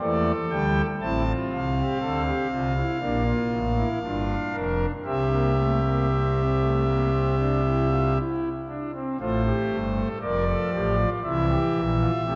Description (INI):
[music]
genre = classical, baroque-style 4-part fugue for pipe organ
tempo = 59 BPM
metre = 4/4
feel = straight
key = F major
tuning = A4 = 445 Hz
[part]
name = pipe organ, foundations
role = solo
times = 0.0-12.4 s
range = F1 to A5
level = -25 LUFS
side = equal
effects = none
[sound]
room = wet church reverb, RT60 3.0 s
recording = dark, warm production, vinyl crackle, nothing above 7.9 kHz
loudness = -25 LUFS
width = mono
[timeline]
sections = 0.0-9.2 A section; 9.2-12.4 B section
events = none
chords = 0.0 G5; 1.0 F/A; 3.0 Bb; 5.1 C; 9.2 F; 11.2 C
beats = 0.00 | 1.01 2.01 3.01 4.03 | 5.06 6.10 7.14 8.17 | 9.21 10.22 11.24 12.25